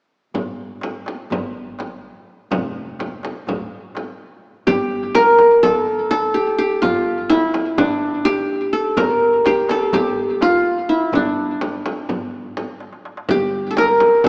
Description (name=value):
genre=Turkish makam ensemble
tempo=250 BPM (eighths)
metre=9/8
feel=straight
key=G makam huseyni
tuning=A4 = 443 Hz
part: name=upright bass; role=bass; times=0.3-14.3 s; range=F1 to D2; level=-31 LUFS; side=equal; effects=none
part: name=darbuka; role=percussion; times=0.3-14.3 s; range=none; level=-41 LUFS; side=equal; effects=none
part: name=frame drum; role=percussion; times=0.3-14.3 s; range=none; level=-28 LUFS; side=equal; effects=none
part: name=qanun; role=melody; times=4.7-14.3 s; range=D4 to Bb4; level=-17 LUFS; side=equal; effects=tape echo
room=moderate concert hall reverb, RT60 2.4 s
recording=small speaker sound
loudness=-18 LUFS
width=mono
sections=0.3-4.7 A section; 4.7-14.3 B section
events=drum fill 12.8-13.3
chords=none